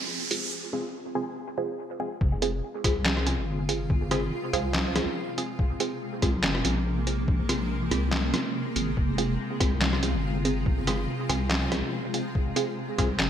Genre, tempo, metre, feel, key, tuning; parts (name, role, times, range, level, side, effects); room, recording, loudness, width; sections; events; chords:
deep dubstep; 142 BPM; 4/4; swing 54% on 16ths, half-time; F minor; A4 = 439 Hz
granular cloud pad; sustained chords; 0.0-13.3 s; C3 to Ab4; -33 LUFS; equal; built-in reverb, wide subtle chorus
riser; sound effects; 0.0-0.5 s; -32 LUFS; right 5 dB
filtered dub chord stab; stabs; 0.3-13.1 s; C4 to Ab4; -32 LUFS; right 2 dB; phaser, vintage 12-bit sampler grit, dub echo
trip hop sampler-style drum kit; drums; 0.3-13.3 s; handclaps, hi-hat, rim click, snare drum; -29 LUFS; equal; overdrive, high-pass filter on hats, high-pass filter on snare, high-pass filter on room, gated reverb
deep soft wobble bass; bass; 2.2-13.3 s; F1 to C2; -29 LUFS; equal; chorus
electronic kick drum; drums; 2.2-13.1 s; -26 LUFS; equal; overdrive
light reverb, digital ambience; bright 1980s-style digital production; -25 LUFS; side -9 dB against mid
0.0-2.2 A section; 2.2-13.3 B section
build-up 0.0-2.2; riser 0.0-0.5; filter sweep on synth stab 0.0-2.2; break 0.5-2.2; drop 2.2-13.3
0.0 Fm